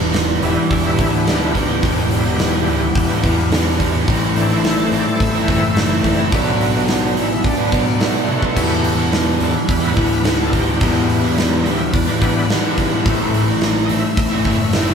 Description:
classic rock; 107 BPM; 4/4; straight; E minor; A4 = 440 Hz
crunchy overdriven guitar; riff; 0.0-14.9 s; A2 to E4; -21 LUFS; right 4 dB; spring reverb
raw garage guitar; riff; 0.0-14.9 s; E2 to B3; -21 LUFS; left 5 dB; overdrive, spring reverb
growling fingered electric bass; bass; 0.0-14.9 s; E1 to E3; -23 LUFS; equal; overdrive
huge arena drum kit; drums; 0.1-14.9 s; crash cymbal, hi-hat, kick drum, snare drum, toms; -19 LUFS; equal
bright tonewheel organ; sustained chords; 0.4-14.9 s; D3 to E5; -23 LUFS; equal; slow rotary speaker, overdrive, chorus vibrato
moderate large studio reverb, RT60 1.3 s; band playing live in one room; -14 LUFS; side -6 dB against mid
0.0-14.9 A section
tonewheel organ solo 0.0-14.9; drum fill 8.3
0.0 Em; 4.1 Am; 6.3 Bm; 8.6 Em; 13.1 Am
0.14 0.70 1.27 | 1.83 2.39 2.95 3.52 | 4.08 4.64 5.20 5.76 | 6.32 6.88 7.45 8.01 | 8.57 9.13 9.69 10.25 | 10.81 11.37 11.93 12.49 | 13.05 13.61 14.17 14.73

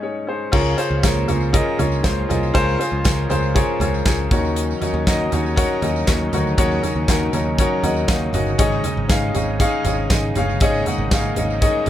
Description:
piano-driven pop; 119 BPM; 4/4; straight; Db major; A4 = 440 Hz
warm baby grand piano; accompaniment; 0.0-11.9 s; Ab2 to Bb5; -20 LUFS; left 2 dB
chorused pulse-width pad; sustained chords; 0.5-11.9 s; Db3 to F4; -30 LUFS; right 4 dB
modern bright picked electric bass; bass; 0.5-11.9 s; G1 to Eb2; -23 LUFS; right 1 dB
modern studio drum kit; drums; 0.5-11.9 s; crash cymbal, hi-hat, kick drum, snare drum, toms; -21 LUFS; right 1 dB
tambourine; percussion; 0.5-11.7 s; -36 LUFS; right 9 dB
light reverb; echo-heavy mix; -17 LUFS; side -11 dB against mid
0.5-11.9 A section
break 0.0-0.5; grand piano fill 7.1-8.6
0.0 Absus4; 0.5 Db6; 4.3 Ebm7; 8.6 Absus4
0.03 | 0.53 1.04 1.54 2.04 | 2.55 3.05 3.56 4.06 | 4.56 5.07 5.57 6.07 | 6.58 7.08 7.59 8.09 | 8.59 9.10 9.60 10.11 | 10.61 11.11 11.62

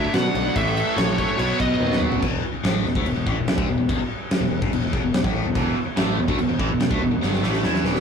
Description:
hard rock; 144 BPM; 4/4; straight; A4 = 440 Hz
smooth overdriven lead guitar; melody; 0.0-2.0 s; C#5 to F#5; -26 LUFS; left 2 dB
dark smooth lead guitar; second line; 0.0-2.0 s; F#4 to D5; -32 LUFS; right 4 dB; overdrive
cranked stack guitar; riff; 0.0-8.0 s; E2 to E4; -26 LUFS; left 6 dB; overdrive, phaser
overdriven electric guitar; riff; 0.0-2.2, 5.6-8.0 s; E2 to E4; -25 LUFS; right 6 dB
modern bright picked electric bass; bass; 0.0-8.0 s; E1 to B2; -26 LUFS; left 1 dB
big rock drum kit; drums; 0.1-8.0 s; crash cymbal, kick drum, snare drum, toms; -24 LUFS; right 1 dB
moderate studio ambience, RT60 0.5 s; rough rehearsal-room recording, warm saturation; -19 LUFS; side -6 dB against mid
0.0-2.2 A section; 2.2-8.0 B section
drum fill 1.8-2.2, 7.2-8.0
0.0 D; 0.6 A5; 1.4 B; 2.2 E5
0.14 | 0.56 0.97 1.39 1.81 | 2.23 2.64 3.06 3.48 | 3.89 4.31 4.73 5.14 | 5.56 5.98 6.39 6.81 | 7.22 7.64

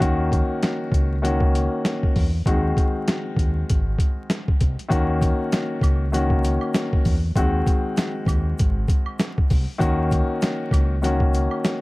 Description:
hip hop, boom-bap hip-hop; 98 BPM; 4/4; swing 57% on 16ths; Eb dorian; A4 = 440 Hz
dark baby grand piano; accompaniment; 0.0-11.8 s; Eb3 to Gb4; -24 LUFS; left 2 dB; high-pass filter, low-pass filter
deep dub fingered electric bass; bass; 0.0-11.5 s; Ab1 to Fb2; -23 LUFS; equal
boom bap sampler-style drum kit; drums; 0.0-11.8 s; hi-hat, kick drum, snare drum; -21 LUFS; equal
egg shaker and woodblock; percussion; 4.9-11.8 s; -39 LUFS; right 5 dB
light reverb; dark, warm production, vinyl crackle; -19 LUFS; side -21 dB against mid
0.0-4.9 A section; 4.9-11.8 B section
0.0 Ebm7; 2.5 Ab7/Eb; 4.9 Ebm7; 7.4 Ab7/Eb; 9.8 Ebm7
| 0.01 0.62 1.24 1.85 | 2.46 3.07 3.69 4.30 | 4.91 5.52 6.13 6.75 | 7.36 7.97 8.58 9.20 | 9.81 10.42 11.03 11.64

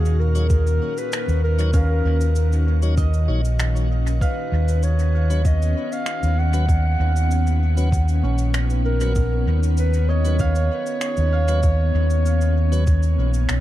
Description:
ambient dub; 97 BPM; 4/4; straight; A4 = 444 Hz
dark clarinet; melody; 0.0-13.5 s; Ab4 to F#5; -28 LUFS; equal; dub echo
soft additive organ-like pad; sustained chords; 0.0-13.6 s; Bb2 to F5; -29 LUFS; left 2 dB; ensemble chorus, built-in reverb
fingered electric bass; bass; 0.0-13.6 s; Bb1 to Eb2; -18 LUFS; equal
cabasa and finger snaps; drums; 0.1-13.6 s; -34 LUFS; right 1 dB; dub echo
tonewheel organ; stabs; 0.4-12.8 s; Gb3 to Db5; -36 LUFS; left 4 dB; overdrive, slow rotary speaker, dub echo
electronic kick drum; drums; 0.5-13.0 s; -20 LUFS; equal
Celtic harp; arpeggios; 1.7-13.0 s; Db4 to F5; -34 LUFS; right 3 dB; dub echo
studio ambience; dark, warm production; -17 LUFS; side -14 dB against mid
0.0-13.6 A section
0.0 Ebm7; 4.2 Bsus2
0.50 1.12 | 1.74 2.36 2.98 3.59 | 4.21 4.83 5.45 6.07 | 6.69 7.30 7.92 8.54 | 9.16 9.78 10.40 11.02 | 11.63 12.25 12.87 13.49

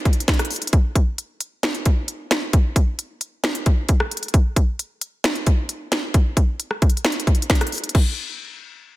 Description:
hip hop; 133 BPM; 4/4; half-time
trap drum kit; drums; 0.1-8.1 s; crash cymbal, finger snaps, hi-hat, kick drum, rim click, snare drum; -18 LUFS; equal
light reverb; dense, heavily limited modern master; -18 LUFS; side -17 dB against mid
0.0-7.9 A section; 7.9-9.0 B section
0.28 | 0.73 1.18 1.63 2.08 | 2.54 2.99 3.44 3.89 | 4.34 4.79 5.24 5.69 | 6.14 6.59 7.05 7.50 | 7.95

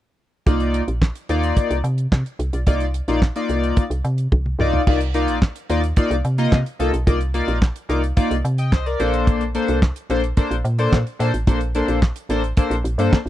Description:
early-eighties boogie funk; 109 BPM; 4/4; straight; C dorian; A4 = 440 Hz
chorused polysynth; accompaniment; 0.5-13.2 s; Bb3 to G5; -21 LUFS; left 2 dB
woody FM bass; bass; 0.5-13.3 s; A1 to C3; -21 LUFS; equal
damped 70s drum kit; drums; 0.5-13.3 s; crash cymbal, handclaps, hi-hat, kick drum, snare drum, toms; -18 LUFS; equal
small room ambience; dry, close 1970s-style studio recording; -18 LUFS; side -13 dB against mid
0.5-4.9 A section; 4.9-13.3 B section
drum fill 4.3-4.9
0.5 Cm11; 9.0 Bbmaj9
| 0.47 1.01 1.57 2.12 | 2.67 3.22 3.77 4.32 | 4.87 5.42 5.97 6.52 | 7.07 7.62 8.17 8.72 | 9.27 9.82 10.37 10.92 | 11.47 12.02 12.57 13.12

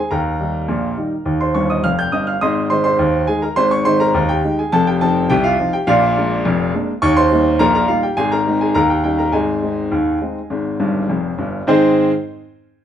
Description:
ragtime piano; 104 BPM; 2/4; straight; Ab major; A4 = 440 Hz
warm baby grand piano; solo; 0.0-12.1 s; F1 to G6; -14 LUFS; equal
moderate stone room reverb, RT60 1.0 s; band playing live in one room, nothing above 10.8 kHz; -14 LUFS; side -9 dB against mid
0.0-11.7 A section; 11.7-12.8 B section
grand piano fill 1.6-2.4, 10.8-11.7
0.1 Eb; 2.4 Ab; 4.7 F7; 5.9 Bb7; 7.0 Eb7; 8.2 Ab; 8.8 Eb7; 9.3 Ab
| 0.11 0.69 | 1.26 1.84 | 2.42 3.00 | 3.58 4.15 | 4.73 5.30 | 5.88 6.45 | 7.03 7.60 | 8.18 8.75 | 9.34 9.92 | 10.51 11.09 | 11.67

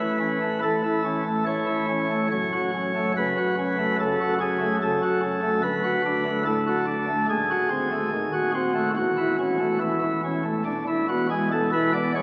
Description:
classical, chorale-style piece for pipe organ; 72 BPM; 4/4; rubato; A major; A4 = 438 Hz
pipe organ, sparkling flutes; solo; 0.0-12.2 s; D1 to D5; -24 LUFS; equal
wet church reverb, RT60 3.7 s; very old 78 rpm record, vinyl crackle; -24 LUFS; mono
0.0-12.2 A section
0.0 A; 2.3 F#m; 5.6 Bm7/D; 7.3 D#dim7; 9.0 A/E; 10.7 E
0.61 1.46 | 2.30 3.14 3.97 4.80 | 5.63 6.45 7.28 8.11 | 8.96 9.80 10.66 11.52

